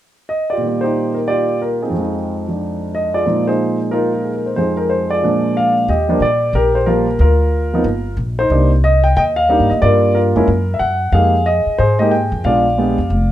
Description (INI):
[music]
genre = jazz piano trio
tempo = 183 BPM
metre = 4/4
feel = swing 64% on 8ths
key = Eb major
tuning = A4 = 444 Hz
[part]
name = warm concert grand piano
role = melody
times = 0.3-13.3 s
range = F2 to G5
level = -15 LUFS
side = equal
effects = plate reverb
[part]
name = upright bass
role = bass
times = 5.9-13.3 s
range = F1 to Bb2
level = -16 LUFS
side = equal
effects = none
[sound]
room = moderate club reverb, RT60 0.7 s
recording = none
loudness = -13 LUFS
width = side -12 dB against mid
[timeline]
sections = 0.6-5.9 A section; 5.9-13.3 B section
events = none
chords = 0.0 Ebmaj7(no3); 0.6 Ebmaj9/Bb; 1.9 Fm7; 3.3 Bb7sus4; 4.6 Fm7; 5.2 Bb7; 5.9 Ebmaj7; 7.2 Bb/D; 7.8 Gm7; 8.5 Cm9; 9.8 Gm7; 10.5 N.C.; 11.1 Fm11; 12.4 Bb7b9